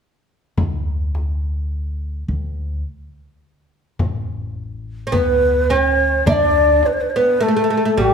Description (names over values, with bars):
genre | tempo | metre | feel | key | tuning
Arabic maqam ensemble | 105 BPM (eighths) | 10/8 | straight | D maqam rast | A4 = 440 Hz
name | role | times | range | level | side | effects
upright bass | bass | 0.6-8.1 s | A1 to D2 | -22 LUFS | equal | none
frame drum | percussion | 0.6-7.1 s | none | -24 LUFS | left 1 dB | none
breathy mellow ney | melody | 5.1-8.1 s | G4 to E5 | -16 LUFS | equal | none
oud | second line | 5.1-8.1 s | G3 to D4 | -19 LUFS | right 2 dB | none
room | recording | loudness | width
wet large studio reverb, RT60 1.4 s | band playing live in one room | -16 LUFS | side -6 dB against mid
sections
0.6-6.3 A section; 6.3-8.1 B section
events
none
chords
none